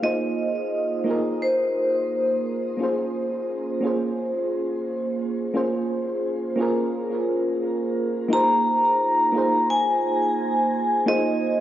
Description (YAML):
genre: chillout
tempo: 87 BPM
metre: 4/4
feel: swing 55% on 16ths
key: Ab major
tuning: A4 = 440 Hz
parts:
  - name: vibraphone with medium hard mallets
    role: melody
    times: 0.0-2.4, 8.3-11.6 s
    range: C5 to Bb5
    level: -22 LUFS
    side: left 1 dB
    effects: shimmer reverb
  - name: mellow FM electric piano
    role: accompaniment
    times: 0.0-11.6 s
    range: Bb3 to C5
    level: -24 LUFS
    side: right 1 dB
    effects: chorus, auto-pan, cassette tape, shimmer reverb, digital delay
room: wet plate reverb, RT60 3.2 s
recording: recorded on a phone in the room, club reverb, nothing above 7.6 kHz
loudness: -21 LUFS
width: side -12 dB against mid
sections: 0.0-8.3 A section; 8.3-11.6 B section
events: none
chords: 0.0 Ab69; 2.8 Bbm9; 8.3 Ab69